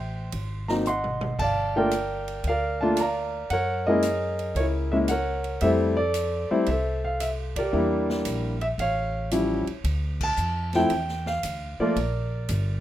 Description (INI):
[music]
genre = jazz piano trio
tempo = 113 BPM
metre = 4/4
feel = swing 68% on 8ths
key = F major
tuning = A4 = 437 Hz
[part]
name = warm concert grand piano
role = melody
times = 0.0-12.8 s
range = F3 to C6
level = -24 LUFS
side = equal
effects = none
[part]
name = upright bass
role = bass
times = 0.0-12.8 s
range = G1 to Gb2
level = -29 LUFS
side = equal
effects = none
[part]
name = swinging big-band drum kit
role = drums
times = 0.3-12.7 s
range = crash cymbal, hi-hat, kick drum, ride cymbal, snare drum, toms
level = -37 LUFS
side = right 2 dB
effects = none
[sound]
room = studio reverb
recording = rough home demo mix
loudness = -23 LUFS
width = side -13 dB against mid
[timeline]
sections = 0.0-9.8 A section; 9.8-12.8 B section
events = drum fill 0.9-1.4; band accent 7.5, 10.1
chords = 0.3 Ab7; 1.4 Gm7; 3.5 Gb9; 5.6 Fmaj7; 7.7 Em7b5; 8.8 A7b13; 9.8 Dmadd9; 12.0 Gm